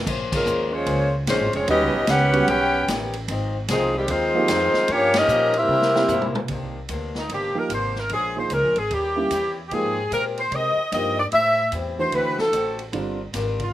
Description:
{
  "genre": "jazz, big band swing",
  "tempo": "149 BPM",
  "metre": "4/4",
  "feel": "swing 64% on 8ths",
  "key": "C minor from 6.5 s",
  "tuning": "A4 = 444 Hz",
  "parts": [
    { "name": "upright bass", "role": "bass", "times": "0.0-13.7 s", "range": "F1 to C3", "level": "-29 LUFS", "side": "equal", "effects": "none" },
    { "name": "picked acoustic archtop guitar", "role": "accompaniment", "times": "0.1-13.6 s", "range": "G2 to C5", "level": "-31 LUFS", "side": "left 6 dB", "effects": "slapback echo" },
    { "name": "swinging big-band drum kit", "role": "drums", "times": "0.1-13.7 s", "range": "crash cymbal, hi-hat, kick drum, ride cymbal, snare drum, toms", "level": "-31 LUFS", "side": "equal", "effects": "none" },
    { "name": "clear saxophone section", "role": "melody", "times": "0.3-13.7 s", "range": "Eb3 to G5", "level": "-20 LUFS", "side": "equal", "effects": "slapback echo" },
    { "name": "clear trombone section", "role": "second line", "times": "0.3-6.3 s", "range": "Db3 to G4", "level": "-28 LUFS", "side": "right 3 dB", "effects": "slapback echo" },
    { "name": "warm upright piano", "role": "accompaniment", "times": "1.7-13.2 s", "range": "D3 to Ab4", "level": "-26 LUFS", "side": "right 4 dB", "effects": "none" }
  ],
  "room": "little or no reverb",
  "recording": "none",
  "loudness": "-19 LUFS",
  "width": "side -13 dB against mid",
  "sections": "0.0-6.5 A section; 6.5-13.7 B section",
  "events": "band accent 0.3, 5.1; drum fill 5.7-6.5",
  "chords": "0.1 Bbm9; 1.7 Eb7alt; 3.3 Ab6; 4.9 Gm7b5; 5.7 C7; 6.5 Cm9; 8.1 Bbm7; 8.9 Eb7b9; 9.7 Abmaj9; 11.3 Am7; 12.1 D7; 12.9 Gm7",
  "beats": "| 0.07 0.47 0.87 1.27 | 1.68 2.08 2.48 2.88 | 3.28 3.68 4.08 4.49 | 4.89 5.29 5.69 6.09 | 6.50 6.90 7.30 7.70 | 8.10 8.51 8.91 9.31 | 9.71 10.12 10.52 10.92 | 11.32 11.73 12.13 12.53 | 12.93 13.34"
}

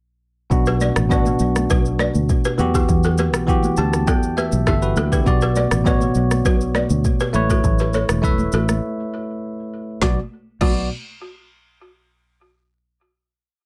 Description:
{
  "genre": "afrobeats",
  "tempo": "101 BPM",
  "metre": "4/4",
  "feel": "straight",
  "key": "B minor",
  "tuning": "A4 = 439 Hz",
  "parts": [
    { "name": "bell-like tine electric piano", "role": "accompaniment", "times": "0.5-10.9 s", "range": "B2 to A5", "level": "-24 LUFS", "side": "equal", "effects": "none" },
    { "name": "fingered electric bass", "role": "bass", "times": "0.5-10.9 s", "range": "E1 to E2", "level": "-23 LUFS", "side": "equal", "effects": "none" },
    { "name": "afro-pop drum kit", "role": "drums", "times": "0.5-10.8 s", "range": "crash cymbal, kick drum, rim click, shaker, snare drum", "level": "-23 LUFS", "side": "equal", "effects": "vintage 12-bit sampler grit" },
    { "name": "congas", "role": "percussion", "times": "0.5-10.9 s", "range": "none", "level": "-32 LUFS", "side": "equal", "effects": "none" },
    { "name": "balafon", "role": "riff", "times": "0.7-10.7 s", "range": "E4 to D5", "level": "-28 LUFS", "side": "equal", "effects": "delay" }
  ],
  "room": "little or no reverb",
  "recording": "none",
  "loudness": "-19 LUFS",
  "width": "mono",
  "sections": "0.5-10.0 verse; 10.0-12.4 final chord",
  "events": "tine electric piano fill 3.5-5.3; break 8.8-10.0",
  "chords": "0.5 Bm; 2.6 Emadd9; 5.3 Bm; 7.3 Aadd9; 10.0 Bm",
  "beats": "| 0.51 1.10 1.70 2.29 | 2.89 3.48 4.08 4.67 | 5.26 5.86 6.45 7.04 | 7.64 8.23 8.83 9.42 | 10.02 10.61"
}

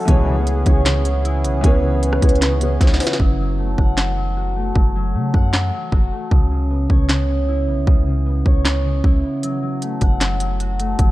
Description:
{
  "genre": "hip hop, trap",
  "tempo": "154 BPM",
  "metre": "4/4",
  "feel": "half-time",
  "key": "F# minor",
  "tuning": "A4 = 437 Hz",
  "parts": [
    { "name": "gliding portamento lead", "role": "second line", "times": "0.0-3.2 s", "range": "G#4 to C#5", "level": "-26 LUFS", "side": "left 1 dB", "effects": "chorus, phaser, slapback echo" },
    { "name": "dark concert grand piano", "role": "accompaniment", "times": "0.0-3.2 s", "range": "E3 to C#5", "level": "-24 LUFS", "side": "equal", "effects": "low-pass filter" },
    { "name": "pedal harmonium", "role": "sustained chords", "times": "0.0-3.2 s", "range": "E3 to G#4", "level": "-29 LUFS", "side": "right 1 dB", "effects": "none" },
    { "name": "concert harp", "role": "arpeggios", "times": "0.0-11.1 s", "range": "C#3 to F#5", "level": "-23 LUFS", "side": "left 1 dB", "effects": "low-pass filter, slapback echo" },
    { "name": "warm 808-style bass", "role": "bass", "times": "0.1-11.1 s", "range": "F#1 to C#3", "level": "-20 LUFS", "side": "equal", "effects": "none" },
    { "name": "trap drum kit", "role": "drums", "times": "0.1-11.1 s", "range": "handclaps, hi-hat, kick drum, rim click, snare drum", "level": "-16 LUFS", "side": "equal", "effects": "none" }
  ],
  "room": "small room ambience",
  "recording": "dark, warm production",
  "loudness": "-15 LUFS",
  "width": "side -17 dB against mid",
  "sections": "0.0-3.2 A section; 3.2-11.1 B section",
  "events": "drum fill 2.8-3.2; hi-hats muted 3.2-9.4; break 9.4-9.8",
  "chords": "0.1 C#m7; 3.2 F#m; 6.3 C#m7; 9.4 F#m",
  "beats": "| 0.08 0.47 0.86 1.25 | 1.64 2.03 2.42 2.81 | 3.20 3.59 3.98 4.37 | 4.75 5.14 5.53 5.92 | 6.31 6.70 7.09 7.48 | 7.87 8.26 8.65 9.04 | 9.43 9.82 10.21 10.60 | 10.99"
}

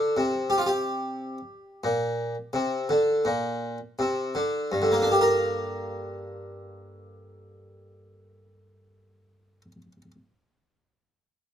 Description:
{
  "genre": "classical, baroque-style suite movement for harpsichord",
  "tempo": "43 BPM",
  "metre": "4/4",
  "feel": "rubato",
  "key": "G minor",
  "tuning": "A4 = 442 Hz",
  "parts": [
    { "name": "harpsichord", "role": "solo", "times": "0.0-10.1 s", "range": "G2 to Bb4", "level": "-24 LUFS", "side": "equal", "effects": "none" }
  ],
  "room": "light reverb",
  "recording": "close, detailed microphones",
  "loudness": "-24 LUFS",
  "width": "side -9 dB against mid",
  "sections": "0.0-4.7 A section; 4.7-10.3 B section",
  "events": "slowing down 0.0-4.7",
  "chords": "0.0 Gm",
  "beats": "0.50 1.85 3.25 | 4.71 6.11 7.48 8.89"
}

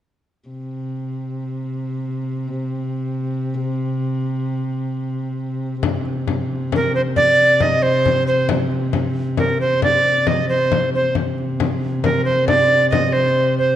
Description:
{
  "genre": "medieval dance",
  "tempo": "90 BPM (dotted quarters)",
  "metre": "6/8",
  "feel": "straight",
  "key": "C minor",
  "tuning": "A4 = 440 Hz",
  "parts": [
    { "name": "dark viola da gamba", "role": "drone", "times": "0.5-13.8 s", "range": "C3", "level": "-22 LUFS", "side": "equal", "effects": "none" },
    { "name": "frame drum", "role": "percussion", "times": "5.8-13.7 s", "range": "none", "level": "-23 LUFS", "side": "left 5 dB", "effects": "none" },
    { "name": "breathy bright alto recorder", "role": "melody", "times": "6.8-13.8 s", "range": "Bb4 to Eb5", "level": "-16 LUFS", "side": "right 2 dB", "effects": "none" }
  ],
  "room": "wet recital hall reverb, RT60 1.6 s",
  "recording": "dark, warm production",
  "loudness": "-17 LUFS",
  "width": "side -11 dB against mid",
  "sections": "0.5-5.8 A section; 5.8-13.8 B section",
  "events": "none",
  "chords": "none",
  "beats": "| 0.50 1.17 | 1.83 2.50 | 3.17 3.83 | 4.50 5.17 | 5.83 6.50 | 7.16 7.83 | 8.49 9.15 | 9.82 10.48 | 11.15 11.81 | 12.47 13.13"
}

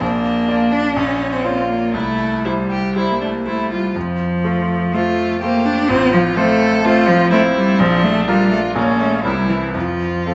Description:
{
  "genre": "quick classical-period movement for piano trio",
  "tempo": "123 BPM",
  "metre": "4/4",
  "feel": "uneven beats, rubato",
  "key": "F major",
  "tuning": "A4 = 441 Hz",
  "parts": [
    { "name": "clear violin", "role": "melody", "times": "0.0-10.3 s", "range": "Db4 to A4", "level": "-24 LUFS", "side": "equal", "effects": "none" },
    { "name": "clear cello", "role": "second line", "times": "0.0-10.3 s", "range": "E3 to D4", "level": "-19 LUFS", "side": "equal", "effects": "none" },
    { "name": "bright grand piano", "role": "accompaniment", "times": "0.0-10.3 s", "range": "A1 to D5", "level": "-22 LUFS", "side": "equal", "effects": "none" }
  ],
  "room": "wet recital hall reverb, RT60 1.5 s",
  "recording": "nothing above 8.0 kHz",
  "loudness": "-17 LUFS",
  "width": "mono",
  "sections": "0.0-10.3 A section",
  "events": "none",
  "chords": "0.0 Bb; 1.0 Bbm; 1.9 C; 4.0 F; 5.9 F/A; 7.8 Bb; 8.8 Bbm; 9.2 C7; 9.7 F5",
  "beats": "| 0.01 0.48 0.96 1.45 | 1.94 2.45 2.95 3.46 | 3.95 4.44 4.93 5.42 | 5.90 6.37 6.85 7.33 | 7.80 8.28 8.76 9.25 | 9.75 10.26"
}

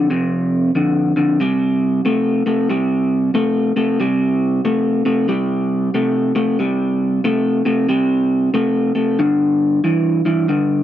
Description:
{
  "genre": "blues",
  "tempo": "92 BPM",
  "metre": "4/4",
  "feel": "swing 63% on 8ths",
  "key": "C major",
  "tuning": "A4 = 439 Hz",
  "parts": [
    { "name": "electric guitar through a small old amp", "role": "solo", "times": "0.0-10.8 s", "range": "F2 to A3", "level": "-15 LUFS", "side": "equal", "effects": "warbly pitch drift" }
  ],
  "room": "moderate club reverb, RT60 0.6 s",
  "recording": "none",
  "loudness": "-15 LUFS",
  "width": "side -11 dB against mid",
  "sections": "0.0-10.8 A section",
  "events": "none",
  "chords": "0.0 F5; 1.4 C5; 9.2 G5",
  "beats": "0.10 0.75 | 1.40 2.05 2.70 3.35 | 4.00 4.65 5.30 5.95 | 6.60 7.25 7.89 8.54 | 9.19 9.84 10.49"
}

